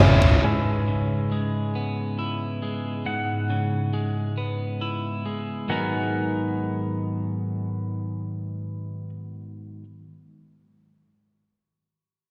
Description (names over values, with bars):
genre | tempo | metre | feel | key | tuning
rock | 46 BPM (dotted quarters) | 6/8 | straight | unclear | A4 = 443 Hz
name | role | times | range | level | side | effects
pedal steel guitar | sustained chords | 0.0-9.1 s | G#3 to F#5 | -35 LUFS | equal | none
twelve-string electric guitar | arpeggios | 0.4-9.8 s | G#2 to A#4 | -29 LUFS | equal | none
room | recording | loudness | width
wet church reverb, RT60 2.6 s | recorded in a church or concert hall | -26 LUFS | mono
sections
0.4-5.7 A section; 5.7-8.3 B section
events
none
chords
0.4 E6/G#; 5.7 G#m9